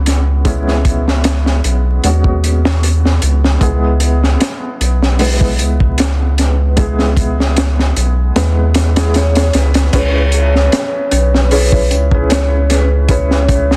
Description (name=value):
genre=trip hop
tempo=76 BPM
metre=4/4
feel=swing 54% on 16ths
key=C# minor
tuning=A4 = 445 Hz
part: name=felt-muted upright piano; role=accompaniment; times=0.0-13.8 s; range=G#3 to C#5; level=-22 LUFS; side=equal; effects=tremolo, tape echo
part: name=round analog bass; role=bass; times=0.0-13.8 s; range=B1 to D#2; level=-15 LUFS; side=equal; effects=tube saturation
part: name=crunchy breakbeat drum kit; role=drums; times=0.1-13.8 s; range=crash cymbal, hi-hat, kick drum, snare drum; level=-18 LUFS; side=equal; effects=none
part: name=vibraphone with medium hard mallets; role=melody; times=9.2-13.8 s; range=B4 to C#5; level=-21 LUFS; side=equal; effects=tape echo
part: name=small celesta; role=arpeggios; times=9.9-13.8 s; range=C#4 to G#4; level=-27 LUFS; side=equal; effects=tape echo
room=small room ambience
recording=dense, heavily limited modern master, vinyl crackle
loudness=-13 LUFS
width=mono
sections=0.0-9.9 A section; 9.9-13.8 B section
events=kick drops out 8.4-9.9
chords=0.0 C#m7